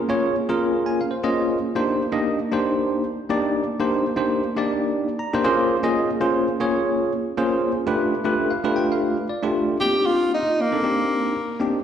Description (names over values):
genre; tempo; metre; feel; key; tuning
jazz; 117 BPM; 4/4; swing 54% on 16ths; unclear; A4 = 440 Hz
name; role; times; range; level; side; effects
bell-like tine electric piano; accompaniment; 0.1-11.8 s; A3 to Bb5; -20 LUFS; equal; medium stereo tremolo, slapback echo
breathy tenor saxophone; melody; 9.8-11.6 s; Bb3 to G4; -20 LUFS; equal; slapback echo
room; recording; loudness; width
moderate club reverb, RT60 0.6 s; live gig heard through the venue's PA, recital hall reverb; -20 LUFS; side -8 dB against mid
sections
0.0-9.8 A section; 9.8-11.8 B section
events
tine electric piano fill 0.6-1.6, 4.9-5.7, 8.3-9.8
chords
0.0 Bbm9; 1.6 Cm9; 5.5 Bbm9; 7.8 G7; 9.8 Cm7